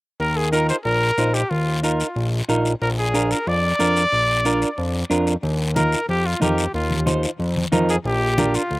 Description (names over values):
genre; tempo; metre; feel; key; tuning
latin, cumbia; 184 BPM; 4/4; straight; Eb major; A4 = 440 Hz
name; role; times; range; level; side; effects
warm trumpet; melody; 0.2-8.8 s; F4 to D5; -22 LUFS; equal; slapback echo
fat analog bass; bass; 0.2-8.8 s; Bb1 to F2; -22 LUFS; equal; none
guiro; percussion; 0.2-8.8 s; none; -31 LUFS; left 3 dB; none
semi-hollow electric guitar; accompaniment; 0.5-8.6 s; D4 to C5; -23 LUFS; right 2 dB; none
congas; percussion; 5.4-8.8 s; none; -26 LUFS; left 1 dB; none
room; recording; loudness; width
little or no reverb; recorded outdoors, with no room sound; -18 LUFS; side -20 dB against mid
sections
0.2-5.4 A section; 5.4-8.8 B section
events
none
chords
0.2 Ebsus2; 2.8 Bb; 5.4 Ebsus2; 8.1 Bb